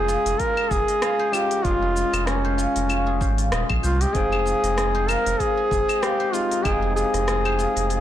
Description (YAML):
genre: organic downtempo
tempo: 96 BPM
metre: 4/4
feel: swing 56% on 16ths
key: F minor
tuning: A4 = 440 Hz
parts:
  - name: warm duduk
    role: melody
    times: 0.0-8.0 s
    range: Db4 to Bb4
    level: -22 LUFS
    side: equal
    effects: tape echo
  - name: bell-like tine electric piano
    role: accompaniment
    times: 0.0-8.0 s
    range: Ab3 to G5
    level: -31 LUFS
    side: left 2 dB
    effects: medium stereo tremolo, sidechain pumping, ping-pong delay
  - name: guzheng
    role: arpeggios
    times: 0.0-8.0 s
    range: F4 to F5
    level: -29 LUFS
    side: left 2 dB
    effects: ping-pong delay
  - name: warm sub bass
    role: bass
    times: 0.0-8.0 s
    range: Eb1 to C2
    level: -25 LUFS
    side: equal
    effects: none
  - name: organic electronic drum kit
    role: drums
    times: 0.1-8.0 s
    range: claves, hi-hat, rim click, shaker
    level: -29 LUFS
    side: left 2 dB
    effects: soft clipping on snare
  - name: electronic kick drum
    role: drums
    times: 0.4-6.8 s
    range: none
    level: -28 LUFS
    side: equal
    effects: none
  - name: quartz singing bowl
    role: texture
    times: 4.2-8.0 s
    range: C5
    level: -34 LUFS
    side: left 4 dB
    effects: none
room: moderate scoring stage reverb, RT60 1.5 s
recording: blown-out, overdriven recording, overdrive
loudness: -19 LUFS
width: side -11 dB against mid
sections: 0.0-8.0 A section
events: none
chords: 0.0 Db/F; 4.2 Fm7